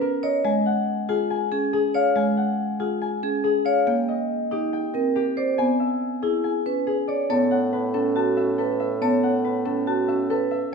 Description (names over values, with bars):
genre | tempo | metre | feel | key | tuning
classical, minimalist pattern music | 140 BPM | 4/4 | straight | A major from 7.3 s | A4 = 444 Hz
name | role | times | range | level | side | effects
concert harp | melody | 0.0-10.7 s | G4 to A#5 | -25 LUFS | left 7 dB | none
marimba with soft mallets | accompaniment | 0.0-10.4 s | Ab3 to Db4 | -26 LUFS | right 2 dB | none
vibraphone with medium hard mallets | arpeggios | 0.0-10.6 s | Eb4 to Db5 | -26 LUFS | right 4 dB | none
mellow bassoon | bass | 7.3-10.6 s | A2 | -27 LUFS | right 2 dB | none
room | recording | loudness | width
moderate recital hall reverb, RT60 1.5 s | minimal, uncompressed stereo recording | -20 LUFS | side -5 dB against mid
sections
0.0-7.3 A section; 7.3-10.7 B section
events
none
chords
0.4 Ab7sus4; 3.9 Cm7; 5.6 E7; 7.3 Aadd9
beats
0.02 | 0.45 0.87 1.30 1.73 | 2.16 2.59 3.02 3.44 | 3.87 4.30 4.73 5.16 | 5.59 6.02 6.45 6.87 | 7.30 7.73 8.16 8.59 | 9.02 9.45 9.87 10.30 | 10.73